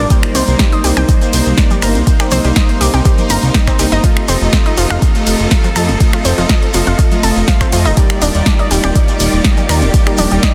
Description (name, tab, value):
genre	progressive house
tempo	122 BPM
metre	4/4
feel	straight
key	unclear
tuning	A4 = 440 Hz
part	dark studio string section	sustained chords	0.0-10.5 s	C3 to D5	-24 LUFS	equal	sidechain pumping
part	analog pluck	arpeggios	0.0-10.5 s	F3 to Bb5	-23 LUFS	equal	chorus, sidechain pumping, delay
part	fat analog bass	bass	0.0-10.4 s	Eb1 to F2	-17 LUFS	equal	sidechain pumping
part	soft supersaw	stabs	0.1-10.5 s	G3 to F5	-20 LUFS	equal	sidechain pumping, delay
part	electronic kick drum	drums	0.1-10.5 s	none	-14 LUFS	equal	overdrive
part	house drum kit	drums	0.1-10.5 s	finger snaps, hi-hat, ride cymbal, snare drum	-21 LUFS	equal	none
part	shekere	percussion	0.1-10.5 s	none	-28 LUFS	equal	none
part	congas	percussion	0.3-10.3 s	none	-26 LUFS	equal	sidechain pumping on perc
room	digital ambience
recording	dense, heavily limited modern master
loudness	-12 LUFS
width	mono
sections	0.0-10.5 A section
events	none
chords	0.1 Cm7; 4.0 F7; 8.0 Ebmaj7